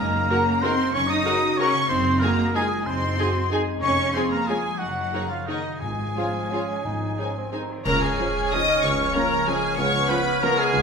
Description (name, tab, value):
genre	classical, orchestral ballroom waltz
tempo	167-205 BPM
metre	3/4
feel	rubato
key	Db major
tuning	A4 = 440 Hz
part	rich symphonic violin section	melody	0.0-10.8 s	Eb5 to Eb6	-29 LUFS	left 3 dB	none
part	mellow flute section	second line	0.0-10.8 s	Eb5 to F6	-29 LUFS	left 1 dB	none
part	warm oboe	second line	0.0-10.8 s	Eb4 to Eb5	-30 LUFS	right 1 dB	none
part	mellow French horn section	sustained chords	0.0-10.8 s	Ab3 to Ab4	-32 LUFS	left 3 dB	none
part	concert harp	arpeggios	0.0-10.8 s	F2 to Eb6	-34 LUFS	left 8 dB	none
part	rich symphonic double bass section	bass	0.0-10.8 s	F1 to Db2	-31 LUFS	right 1 dB	none
part	warm symphonic cello section	bass	0.0-10.8 s	Db3 to Eb4	-28 LUFS	right 2 dB	none
part	warm symphonic violin section	second line	0.3-10.8 s	Ab4 to Ab5	-30 LUFS	equal	none
part	rich symphonic viola section	accompaniment	0.3-10.5 s	F3 to Bb4	-32 LUFS	equal	none
part	warm trombone section	sustained chords	0.3-10.5 s	Db3 to Db4	-37 LUFS	right 4 dB	none
part	dark trumpet section	stabs	0.3-10.8 s	Eb4 to Eb5	-30 LUFS	right 1 dB	none
part	cymbal swell, clash cymbals and concert bass drum	percussion	5.8-8.5 s	none	-36 LUFS	equal	none
part	timpani	percussion	5.8-10.2 s	Ab2 to Db3	-35 LUFS	left 2 dB	none
part	warm bassoon	accompaniment	6.2-10.8 s	F3 to Eb4	-31 LUFS	right 2 dB	none
part	mellow tuba	bass	7.9-10.8 s	Db2	-32 LUFS	right 4 dB	none
room	wet recital hall reverb, RT60 1.4 s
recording	minimal, uncompressed stereo recording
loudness	-20 LUFS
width	side -5 dB against mid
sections	0.0-7.9 A section; 7.9-10.8 B section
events	band accent 7.9-8.2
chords	0.0 Gb; 1.9 Ab7/Gb; 3.8 Db/F; 4.8 Ebm7/Gb; 5.8 Db/Ab; 6.8 Ab; 7.9 Db; 9.8 Db7